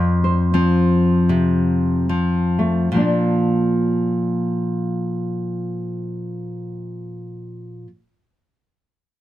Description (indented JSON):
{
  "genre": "folk",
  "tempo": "70-83 BPM",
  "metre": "4/4",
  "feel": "swing 59% on 8ths",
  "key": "Bb major",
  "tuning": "A4 = 442 Hz",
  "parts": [
    { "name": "nylon-string guitar", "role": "accompaniment", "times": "0.0-7.9 s", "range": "F2 to C5", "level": "-18 LUFS", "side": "left 1 dB", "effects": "none" }
  ],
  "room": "light reverb",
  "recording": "close, detailed microphones",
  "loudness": "-17 LUFS",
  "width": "side -14 dB against mid",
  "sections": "0.0-2.9 A section; 2.9-6.4 B section",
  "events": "slowing down 0.0-2.9",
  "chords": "0.0 F5; 2.9 Bb"
}